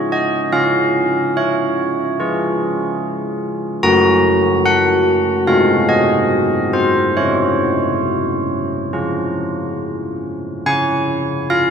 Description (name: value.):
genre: classical, tune for church bells.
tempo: 68-74 BPM.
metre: 4/4.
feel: straight.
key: Db major.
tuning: A4 = 441 Hz.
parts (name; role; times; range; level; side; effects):
carillon bells; solo; 0.0-11.7 s; Gb3 to Bb5; -14 LUFS; equal; none.
room: wet cathedral reverb, RT60 5.2 s.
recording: minimal, uncompressed stereo recording.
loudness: -14 LUFS.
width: side -7 dB against mid.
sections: 0.0-10.7 A section; 10.7-11.7 A section.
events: none.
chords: 0.0 Db; 3.8 Gb; 5.5 Ab7; 7.2 Db.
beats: | 0.54 1.37 2.20 3.02 | 3.83 4.65 5.46 6.30 | 7.16 8.04 8.92 9.79 | 10.66 11.49.